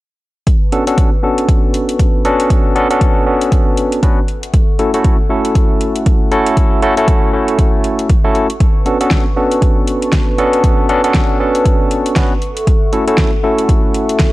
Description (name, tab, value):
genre	deep house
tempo	118 BPM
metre	4/4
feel	swing 58% on 16ths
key	B minor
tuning	A4 = 440 Hz
part	warm analog pad	sustained chords	0.5-14.3 s	A4 to C#6	-23 LUFS	equal	chorus, sidechain pumping
part	deep house drum kit	drums	0.5-14.3 s	hi-hat, snare drum	-22 LUFS	equal	overdrive
part	electronic kick drum	drums	0.5-14.3 s	none	-13 LUFS	equal	overdrive
part	barky tine electric piano	stabs	0.7-14.3 s	A3 to B4	-15 LUFS	equal	medium stereo tremolo, sidechain pumping, low-pass filter, tape echo
room	digital ambience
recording	none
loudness	-11 LUFS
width	side -18 dB against mid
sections	0.5-14.3 A section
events	filter sweep on analog synth pad 0.5-14.3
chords	0.5 Bm9; 4.3 F#m7; 8.6 Bm9; 12.4 F#m7